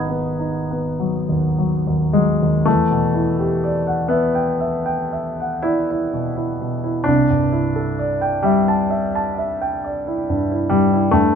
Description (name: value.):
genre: classical, impressionist solo piano.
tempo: 34-46 BPM (dotted quarters).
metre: 9/8.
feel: rubato.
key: E minor.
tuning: A4 = 440 Hz.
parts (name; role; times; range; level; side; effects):
warm grand piano; solo; 0.0-11.4 s; G#1 to G#6; -17 LUFS; equal; none.
room: moderate studio reverb, RT60 0.6 s.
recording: nothing above 7.9 kHz.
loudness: -17 LUFS.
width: side -7 dB against mid.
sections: 0.0-2.7 A section; 2.7-11.4 B section.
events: none.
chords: 0.0 G#m7; 2.7 Em11; 7.1 C69.